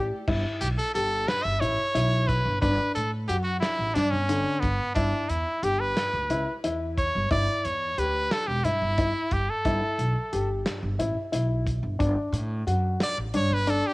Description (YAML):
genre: progressive instrumental, band music in an uneven meter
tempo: 179 BPM (eighths)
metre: 7/8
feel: straight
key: G lydian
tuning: A4 = 438 Hz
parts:
  - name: brilliant trumpet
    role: melody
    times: 0.0-13.9 s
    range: B3 to E5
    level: -27 LUFS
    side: equal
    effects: cassette tape
  - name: dark baby grand piano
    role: arpeggios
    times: 0.0-13.9 s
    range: D3 to G4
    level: -30 LUFS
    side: left 2 dB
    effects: cassette tape
  - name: upright bass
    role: bass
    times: 0.0-13.8 s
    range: E1 to A2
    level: -28 LUFS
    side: equal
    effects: none
  - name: warm soul drum kit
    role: drums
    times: 0.3-13.8 s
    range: crash cymbal, hi-hat, kick drum, snare drum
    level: -31 LUFS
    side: equal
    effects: none
room: light reverb, small room ambience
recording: home recording on cassette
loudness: -24 LUFS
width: side -21 dB against mid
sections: 0.3-13.9 A section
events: trumpet solo 0.3-13.9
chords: 0.3 Emadd11/G; 2.6 Gmaj9#11; 5.0 G6; 7.3 G5; 9.7 Emadd11/G; 12.0 Gmaj7sus2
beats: | 0.28 0.62 0.95 1.29 1.62 1.96 2.29 | 2.63 2.96 3.30 3.63 3.97 4.30 4.63 | 4.97 5.30 5.64 5.97 6.31 6.64 6.98 | 7.31 7.65 7.98 8.32 8.65 8.99 9.32 | 9.66 9.99 10.32 10.66 10.99 11.33 11.66 | 12.00 12.33 12.67 13.00 13.34 13.67